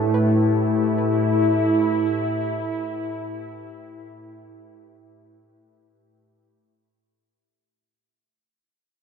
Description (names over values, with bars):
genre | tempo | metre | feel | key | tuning
ambient | free time | none | none | unclear | A4 = 437 Hz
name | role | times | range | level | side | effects
warm analog pad | sustained chords | 0.0-6.5 s | A2 to B4 | -20 LUFS | equal | wide subtle chorus
soft round pluck | arpeggios | 0.0-5.1 s | E3 to B4 | -34 LUFS | right 2 dB | chorus, cassette tape, ping-pong delay
organ-like drone | drone | 0.0-6.6 s | A3 to E4 | -41 LUFS | left 1 dB | none
room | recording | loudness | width
wet lush hall reverb, RT60 2.8 s | dreamy mix soaked in reverb | -19 LUFS | side -6 dB against mid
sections
0.0-6.5 A section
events
fade-out 0.0-6.5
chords
0.0 G/A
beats
free time